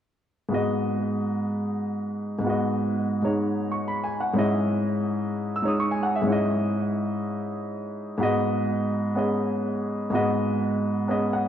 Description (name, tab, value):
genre	jazz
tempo	125 BPM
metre	4/4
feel	swing 67% on 8ths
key	G# minor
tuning	A4 = 438 Hz
part	clear grand piano	solo	0.5-11.5 s	G#2 to E6	-23 LUFS	equal	tape echo
room	wet plate reverb, RT60 2.8 s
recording	dreamy mix soaked in reverb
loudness	-23 LUFS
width	side -10 dB against mid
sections	0.5-11.5 A section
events	none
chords	0.5 G#m7; 4.4 C#madd9/G#; 8.2 G#m7